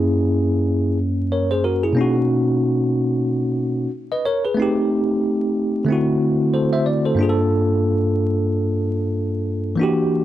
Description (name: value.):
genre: hip hop.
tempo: 92 BPM.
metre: 4/4.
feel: swing 58% on 16ths.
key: unclear.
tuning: A4 = 440 Hz.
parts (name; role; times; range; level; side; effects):
bell-like tine electric piano; solo; 0.0-10.2 s; F#2 to E5; -17 LUFS; equal; medium stereo tremolo.
room: light reverb.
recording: vinyl crackle.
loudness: -17 LUFS.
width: side -13 dB against mid.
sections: 0.0-10.2 A section.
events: none.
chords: 0.0 F#9; 2.0 Bmaj9; 4.6 Am7b5; 5.9 D7; 7.2 Gm9.